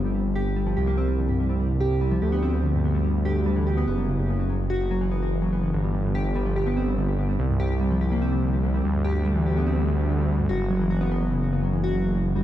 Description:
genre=IDM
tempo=145 BPM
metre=4/4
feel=straight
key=unclear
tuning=A4 = 440 Hz
part: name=harp-like synth pluck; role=arpeggios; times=0.0-12.4 s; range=F#2 to G4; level=-25 LUFS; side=left 1 dB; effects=chorus, dub echo
part: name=dark detuned saw bass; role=bass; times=0.0-12.4 s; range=F#1 to D2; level=-24 LUFS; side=right 1 dB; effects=none
room=moderate echo chamber reverb, RT60 1.9 s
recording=echo-heavy mix, nothing above 10.6 kHz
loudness=-22 LUFS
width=side -12 dB against mid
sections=0.0-12.4 A section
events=none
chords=0.0 N.C.; 0.8 C5; 2.2 Dsus4; 3.9 N.C.; 7.4 C5; 8.8 Dsus4; 10.5 N.C.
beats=0.35 | 0.77 1.18 1.60 2.01 | 2.42 2.84 3.25 3.67 | 4.08 4.49 4.91 5.32 | 5.73 6.15 6.56 6.98 | 7.39 7.80 8.22 8.63 | 9.04 9.46 9.87 10.29 | 10.70 11.11 11.53 11.94 | 12.36

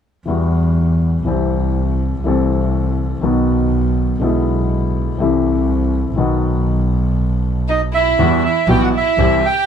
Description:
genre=tango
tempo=122 BPM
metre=4/4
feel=rubato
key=E harmonic minor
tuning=A4 = 441 Hz
part: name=warm grand piano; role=accompaniment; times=0.3-9.4 s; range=B1 to A4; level=-18 LUFS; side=left 3 dB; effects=none
part: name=clear double bass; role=bass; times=0.3-9.4 s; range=B1 to E2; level=-18 LUFS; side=right 1 dB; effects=none
part: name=bandoneon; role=melody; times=7.7-9.7 s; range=D#5 to G5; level=-16 LUFS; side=right 4 dB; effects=none
part: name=warm chamber violin section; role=second line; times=7.7-9.7 s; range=D#4 to G4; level=-21 LUFS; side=right 2 dB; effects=none
room=moderate studio ambience, RT60 0.5 s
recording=heard from further back in the room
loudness=-14 LUFS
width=side -8 dB against mid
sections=0.3-8.2 A section; 8.2-9.7 B section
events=none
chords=0.3 Emadd9; 1.3 C; 2.2 Am/C; 3.2 B; 4.2 E7/B; 5.2 Am/C; 6.2 B; 8.2 Emadd9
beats=| 0.27 0.76 1.26 1.76 | 2.25 2.74 3.23 3.72 | 4.22 4.71 5.20 5.70 | 6.19 6.68 7.18 7.69 | 8.20 8.70 9.19

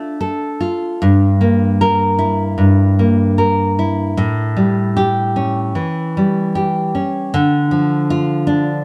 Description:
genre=romantic piece for solo classical guitar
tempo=72-80 BPM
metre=4/4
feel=rubato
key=D minor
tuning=A4 = 438 Hz
part: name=nylon-string guitar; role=solo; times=0.0-8.8 s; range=G2 to Bb4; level=-16 LUFS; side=equal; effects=none
room=moderate spring reverb, RT60 3.0 s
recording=dark, warm production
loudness=-16 LUFS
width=mono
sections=0.0-8.8 A section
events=none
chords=0.0 Dm; 1.0 Edim/G; 4.2 A7; 7.3 Dm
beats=0.20 | 1.02 1.81 2.58 3.38 | 4.17 4.96 5.75 6.55 | 7.34 8.10

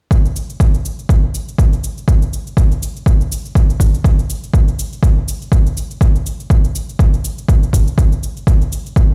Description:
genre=house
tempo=122 BPM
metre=4/4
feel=swing 56% on 16ths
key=none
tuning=none
part: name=electronic kick drum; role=drums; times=0.1-9.1 s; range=none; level=-15 LUFS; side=equal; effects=none
part: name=shaker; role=drums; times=0.1-9.1 s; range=none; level=-32 LUFS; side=equal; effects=none
room=little or no reverb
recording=played on a big sound system in a bare room, large studio reverb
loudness=-15 LUFS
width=mono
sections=0.1-9.1 A section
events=none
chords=none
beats=| 0.11 0.60 1.09 1.59 | 2.08 2.57 3.06 3.55 | 4.04 4.54 5.03 5.52 | 6.01 6.50 7.00 7.49 | 7.98 8.47 8.96

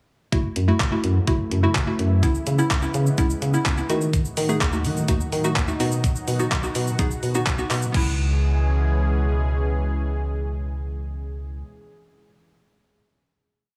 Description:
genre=dance-pop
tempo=126 BPM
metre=4/4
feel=straight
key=C# minor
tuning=A4 = 440 Hz
part: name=hollow square pluck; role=accompaniment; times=0.3-11.6 s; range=A3 to G#4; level=-28 LUFS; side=equal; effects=chorus, sidechain pumping
part: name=lush unison pad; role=sustained chords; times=1.0-11.6 s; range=A2 to G#4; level=-33 LUFS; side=equal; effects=chorus, sidechain pumping
part: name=solid FM bass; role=bass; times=0.3-11.6 s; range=F#1 to D#3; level=-25 LUFS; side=equal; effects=sidechain pumping
part: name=crisp 8-bit digital drum machine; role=drums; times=0.3-8.1 s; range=crash cymbal, handclaps, hi-hat, kick drum, shaker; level=-27 LUFS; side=equal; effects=overdrive
room=light reverb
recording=small room ambience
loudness=-22 LUFS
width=mono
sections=0.3-7.9 pre-chorus; 7.9-11.8 final chord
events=none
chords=0.3 F#m7; 2.2 C#m7; 3.9 D#dim; 5.8 B; 7.9 C#m7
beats=| 0.33 0.80 1.28 1.75 | 2.23 2.71 3.18 3.66 | 4.13 4.61 5.09 5.56 | 6.04 6.52 6.99 7.47 | 7.94 8.42 8.90 9.37 | 9.85 10.32 10.80 11.28

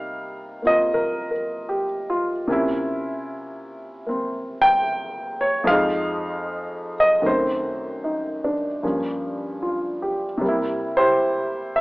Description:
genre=solo jazz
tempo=76 BPM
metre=4/4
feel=swing 66% on 8ths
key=unclear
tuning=A4 = 440 Hz
part: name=warm baby grand piano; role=solo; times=0.0-11.8 s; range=F2 to G5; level=-21 LUFS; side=equal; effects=none
room=moderate large studio reverb, RT60 1.1 s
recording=AM radio sound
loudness=-20 LUFS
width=side -22 dB against mid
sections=0.0-11.8 A section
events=grand piano solo 0.0-11.8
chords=0.0 Cm7; 2.5 C7b9; 5.7 Fm7; 7.2 F#dim7; 8.8 Gm7b5; 10.4 C7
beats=0.10 0.90 1.69 | 2.48 3.27 4.07 4.86 | 5.65 6.45 7.24 8.03 | 8.83 9.62 10.42 11.21

